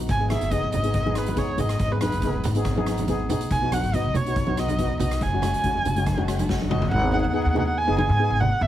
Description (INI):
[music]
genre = calypso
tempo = 140 BPM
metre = 4/4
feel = straight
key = G# minor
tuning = A4 = 442 Hz
[part]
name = steel pan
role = accompaniment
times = 0.0-8.5 s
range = G#3 to G#4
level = -28 LUFS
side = left 2 dB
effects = none
[part]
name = upright bass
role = bass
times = 0.0-8.7 s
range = F#1 to G#2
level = -26 LUFS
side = equal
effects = none
[part]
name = dark erhu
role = melody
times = 0.1-8.7 s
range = B4 to G#5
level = -26 LUFS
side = right 1 dB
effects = none
[part]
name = street-band drum kit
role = drums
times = 0.1-6.9 s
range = hi-hat, kick drum, rim click, snare drum, toms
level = -29 LUFS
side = equal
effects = none
[part]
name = congas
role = percussion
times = 0.3-8.5 s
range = none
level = -30 LUFS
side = right 2 dB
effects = none
[sound]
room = light reverb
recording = heavily compressed radio sound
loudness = -21 LUFS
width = side -12 dB against mid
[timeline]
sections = 0.0-6.9 A section; 6.9-8.7 B section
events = drum fill 6.5-6.9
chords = 0.1 G#m; 3.5 B; 5.2 F#sus2; 6.9 G#m7